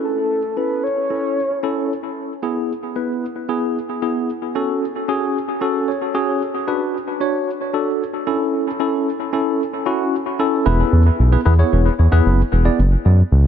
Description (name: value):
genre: dance-pop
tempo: 113 BPM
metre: 4/4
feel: straight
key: unclear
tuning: A4 = 440 Hz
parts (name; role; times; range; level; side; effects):
- soft octave-layered synth lead; melody; 0.0-1.9 s; A4 to C#5; -22 LUFS; equal; chorus, analog delay
- tine electric piano; accompaniment; 0.0-12.8 s; B3 to D5; -19 LUFS; equal; medium stereo tremolo, analog delay
- round analog bass; bass; 10.7-13.5 s; E1 to F#2; -12 LUFS; equal; none
room: light reverb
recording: echo-heavy mix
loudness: -16 LUFS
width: side -9 dB against mid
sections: 0.0-2.2 A section; 2.2-10.7 B section; 10.7-13.5 C section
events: build-up 2.2-10.7; tine electric piano fill 5.6-6.4; drop 10.7-13.5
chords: 0.0 A; 2.2 E; 4.3 F#m; 6.4 Bm; 8.3 A; 10.7 E; 12.8 F#5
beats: | 0.04 0.57 1.10 1.64 | 2.17 2.70 3.23 3.76 | 4.29 4.82 5.35 5.88 | 6.41 6.95 7.48 8.01 | 8.54 9.07 9.60 10.13 | 10.66 11.19 11.72 12.26 | 12.79 13.32